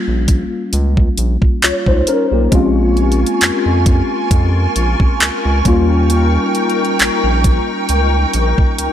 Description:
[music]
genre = contemporary R&B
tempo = 67 BPM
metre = 4/4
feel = swing 54% on 16ths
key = unclear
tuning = A4 = 442 Hz
[part]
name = mellow tine electric piano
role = accompaniment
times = 0.0-8.9 s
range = G3 to Db5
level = -18 LUFS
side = left 2 dB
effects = ensemble chorus
[part]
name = round analog bass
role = bass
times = 0.1-8.9 s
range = Bb1 to F2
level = -15 LUFS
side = equal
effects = none
[part]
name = smooth R&B drum kit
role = drums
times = 0.3-8.9 s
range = handclaps, hi-hat, kick drum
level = -15 LUFS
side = equal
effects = none
[part]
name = glassy FM pad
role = sustained chords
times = 2.5-8.9 s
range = Eb4 to Db6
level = -18 LUFS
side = equal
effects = ensemble chorus, built-in reverb, sidechain pumping
[sound]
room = digital ambience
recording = none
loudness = -12 LUFS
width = side -10 dB against mid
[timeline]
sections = 0.0-8.9 A section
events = none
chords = 0.0 Eb7; 2.5 Bbm7; 5.7 Eb7

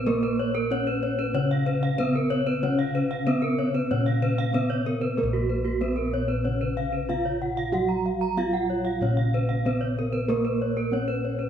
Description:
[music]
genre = gamelan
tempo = 94 BPM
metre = 4/4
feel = straight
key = Bb pelog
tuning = A4 = 439 Hz
[part]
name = gamelan-type bronze metallophone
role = melody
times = 0.0-11.5 s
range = Bb3 to Gb4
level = -28 LUFS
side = right 1 dB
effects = slapback echo
[part]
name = gamelan-type bronze metallophone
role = accompaniment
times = 0.0-11.5 s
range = Db3 to Bb3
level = -32 LUFS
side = equal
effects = none
[part]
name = gamelan-type bronze metallophone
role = arpeggios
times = 0.0-11.5 s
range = Gb4 to Bb5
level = -32 LUFS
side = right 3 dB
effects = none
[part]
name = gamelan-type bossed gongs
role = bass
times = 0.0-11.5 s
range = Bb1 to Bb4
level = -28 LUFS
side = equal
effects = none
[part]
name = gamelan-type bronze metallophone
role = arpeggios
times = 0.1-11.4 s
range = Bb4 to Gb5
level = -31 LUFS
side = left 4 dB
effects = none
[sound]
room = moderate scoring stage reverb, RT60 1.4 s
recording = small room ambience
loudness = -23 LUFS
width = side -9 dB against mid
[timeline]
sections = 0.0-11.5 A section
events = none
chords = none

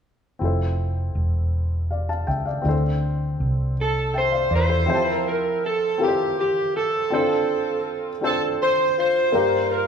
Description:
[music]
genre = gospel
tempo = 54 BPM (dotted quarters)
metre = 6/8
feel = straight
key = F major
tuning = A4 = 440 Hz
[part]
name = dark baby grand piano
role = accompaniment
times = 0.4-9.9 s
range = G2 to A5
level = -26 LUFS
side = left 2 dB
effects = none
[part]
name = hollow-body short-scale fingered electric bass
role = bass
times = 0.4-4.9 s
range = E1 to E2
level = -22 LUFS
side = equal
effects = none
[part]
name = electric slide guitar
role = melody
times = 3.8-9.8 s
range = G4 to C5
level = -24 LUFS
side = right 5 dB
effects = none
[part]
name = mellow saxophone section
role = melody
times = 3.8-9.9 s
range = C4 to C5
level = -23 LUFS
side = left 2 dB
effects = none
[sound]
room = moderate large studio reverb, RT60 1.4 s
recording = band playing live in one room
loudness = -20 LUFS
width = side -7 dB against mid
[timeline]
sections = 0.4-4.9 A section; 4.9-9.9 B section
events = none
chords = 0.4 Fmaj7; 2.7 Dm7; 4.9 Fmaj7; 7.1 Dm7; 9.3 Gm7

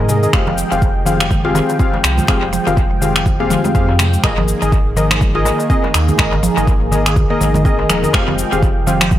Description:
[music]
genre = afro house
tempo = 123 BPM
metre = 4/4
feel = swing 58% on 16ths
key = F minor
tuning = A4 = 440 Hz
[part]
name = warm analog pad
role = sustained chords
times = 0.0-9.2 s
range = Eb3 to G5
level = -22 LUFS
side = right 1 dB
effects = chorus, sidechain pumping
[part]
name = warm analog keys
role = stabs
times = 0.0-9.0 s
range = C4 to F5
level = -19 LUFS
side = left 2 dB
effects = chorus, sidechain pumping, dub echo
[part]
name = warm sub bass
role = bass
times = 0.0-9.2 s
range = Eb1 to Ab2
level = -19 LUFS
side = equal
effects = sidechain pumping
[part]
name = mallet-like synth pluck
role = arpeggios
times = 0.1-9.2 s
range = C3 to F4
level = -23 LUFS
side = right 1 dB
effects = chorus, phaser, sidechain pumping, dub echo
[part]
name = electronic cabasa and finger snaps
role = drums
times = 0.1-9.2 s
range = none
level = -20 LUFS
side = equal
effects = overdrive, dub echo
[part]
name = congas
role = percussion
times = 0.1-9.2 s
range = none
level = -25 LUFS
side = right 3 dB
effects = dub echo
[part]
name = electronic kick drum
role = drums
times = 0.3-9.2 s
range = none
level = -16 LUFS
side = equal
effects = overdrive
[part]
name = darbuka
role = percussion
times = 0.3-9.2 s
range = none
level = -24 LUFS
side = left 1 dB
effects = dub echo
[sound]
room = light reverb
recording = echo-heavy mix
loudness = -12 LUFS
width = side -12 dB against mid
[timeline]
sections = 0.0-9.2 A section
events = none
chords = 0.3 Fmadd9; 4.2 Absus2; 8.1 Fmadd9

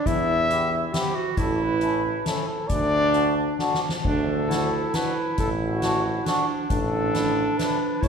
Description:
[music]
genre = alpine folk, alpine dance band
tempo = 136 BPM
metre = 3/4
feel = straight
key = D major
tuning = A4 = 440 Hz
[part]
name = dark trumpet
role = melody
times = 0.0-8.1 s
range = F#4 to E5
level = -27 LUFS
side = left 2 dB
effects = none
[part]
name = warm clarinet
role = second line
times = 0.0-8.1 s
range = D4 to G4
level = -26 LUFS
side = right 4 dB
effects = none
[part]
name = clear tuba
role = bass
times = 0.1-8.1 s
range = A1 to E2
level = -30 LUFS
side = left 1 dB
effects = none
[part]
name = soft-mallet drum kit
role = drums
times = 0.1-8.1 s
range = crash cymbal, hi-hat, kick drum, snare drum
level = -29 LUFS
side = left 1 dB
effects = none
[part]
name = mellow accordion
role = accompaniment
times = 0.5-7.8 s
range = B3 to A4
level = -30 LUFS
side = left 2 dB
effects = none
[sound]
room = moderate concert hall reverb, RT60 2.1 s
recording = recorded in a church or concert hall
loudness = -21 LUFS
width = side -6 dB against mid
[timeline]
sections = 0.0-4.0 A section; 4.0-8.1 B section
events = drum fill 3.6-4.0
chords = 0.1 Em; 1.4 A; 2.7 D; 6.7 Asus4

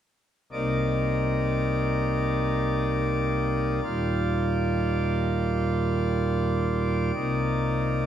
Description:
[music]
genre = hip hop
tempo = free time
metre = none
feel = none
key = unclear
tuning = A4 = 437 Hz
[part]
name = pipe organ, principal chorus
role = sustained chords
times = 0.5-8.1 s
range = C2 to D5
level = -23 LUFS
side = equal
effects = none
[sound]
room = wet plate reverb, RT60 3.7 s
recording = dreamy mix soaked in reverb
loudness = -23 LUFS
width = side -10 dB against mid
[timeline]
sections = 0.5-8.1 A section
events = none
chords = 0.5 Cm7; 3.8 Ebmaj7; 7.1 Cm7

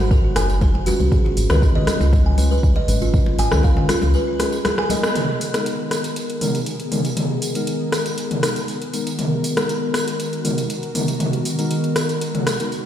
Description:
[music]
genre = afro house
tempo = 119 BPM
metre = 4/4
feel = straight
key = G# dorian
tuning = A4 = 440 Hz
[part]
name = mellow tine electric piano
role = stabs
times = 0.0-12.7 s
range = G#3 to B#4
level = -25 LUFS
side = left 3 dB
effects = wide subtle chorus, sidechain pumping, digital delay
[part]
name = woody FM bass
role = bass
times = 0.0-4.1 s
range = F#1 to C#2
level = -18 LUFS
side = equal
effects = sidechain pumping
[part]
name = congas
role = percussion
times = 0.0-5.0 s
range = none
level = -27 LUFS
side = left 3 dB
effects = none
[part]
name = buzzing kalimba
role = arpeggios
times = 0.1-5.0 s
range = E#4 to G#5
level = -25 LUFS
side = right 3 dB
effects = sidechain pumping, digital delay
[part]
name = electronic kick drum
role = drums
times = 0.1-3.7 s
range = none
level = -17 LUFS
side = equal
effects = none
[part]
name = tambourine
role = percussion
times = 0.1-12.8 s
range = none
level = -33 LUFS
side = right 4 dB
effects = none
[part]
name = deep house drum kit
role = drums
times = 0.4-12.8 s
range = hi-hat, rim click, toms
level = -23 LUFS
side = equal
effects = overdrive
[part]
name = ethereal airy pad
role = sustained chords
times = 5.7-12.9 s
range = D#3 to A#4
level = -27 LUFS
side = equal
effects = ensemble chorus, built-in reverb, sidechain pumping
[sound]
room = moderate plate reverb, RT60 2.2 s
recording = played on a big sound system in a bare room, stone room reverb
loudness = -17 LUFS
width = side -10 dB against mid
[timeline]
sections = 0.0-5.2 A section; 5.2-12.9 B section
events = break 4.1-5.2; drum fill 4.4-5.2; band accent 5.0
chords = 0.0 G#7; 1.1 C#7; 5.2 G#madd9

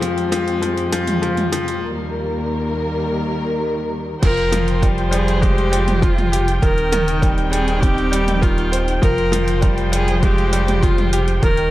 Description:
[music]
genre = piano and strings electronica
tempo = 100 BPM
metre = 4/4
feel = straight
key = F minor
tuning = A4 = 440 Hz
[part]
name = dark studio string section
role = sustained chords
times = 0.0-11.7 s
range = Eb2 to G5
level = -24 LUFS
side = equal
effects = sidechain pumping
[part]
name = bright grand piano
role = riff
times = 0.0-11.7 s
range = Eb3 to C5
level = -21 LUFS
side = left 2 dB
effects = tape echo
[part]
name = deep house drum kit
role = drums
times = 0.0-11.7 s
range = crash cymbal, hi-hat, toms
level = -26 LUFS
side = right 2 dB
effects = none
[part]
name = warm viola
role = melody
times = 4.2-11.7 s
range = F4 to Bb4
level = -22 LUFS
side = equal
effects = none
[part]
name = round analog bass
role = bass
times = 4.2-11.7 s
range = Eb1 to F1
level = -20 LUFS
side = equal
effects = sidechain pumping
[part]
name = electronic kick drum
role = drums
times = 4.2-11.5 s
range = none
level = -17 LUFS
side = equal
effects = none
[sound]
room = light reverb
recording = none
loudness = -16 LUFS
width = side -15 dB against mid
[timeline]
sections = 0.0-4.2 A section; 4.2-11.7 B section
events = build-up 0.0-4.2; break 1.8-4.2; drop 4.2-11.7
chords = 0.0 Fmadd9; 1.8 Eb; 4.2 Fmadd9; 6.6 Cm/Eb; 9.0 Fmadd9

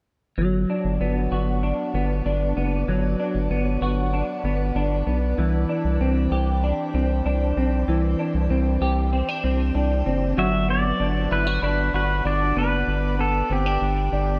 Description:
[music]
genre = dream pop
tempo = 96 BPM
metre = 4/4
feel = straight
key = G major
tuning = A4 = 440 Hz
[part]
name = semi-hollow electric guitar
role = arpeggios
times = 0.4-14.4 s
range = E3 to G4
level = -26 LUFS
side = equal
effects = ensemble chorus, tape echo
[part]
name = round analog bass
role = bass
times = 0.4-14.4 s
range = F#1 to C2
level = -26 LUFS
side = equal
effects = none
[part]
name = pedal steel guitar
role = melody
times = 10.4-14.4 s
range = G4 to E5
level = -27 LUFS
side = equal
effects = tape echo
[sound]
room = light reverb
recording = dark, warm production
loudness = -23 LUFS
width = mono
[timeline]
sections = 0.4-10.4 A section; 10.4-14.4 B section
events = none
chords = 0.4 Gmaj7; 5.4 Cadd9

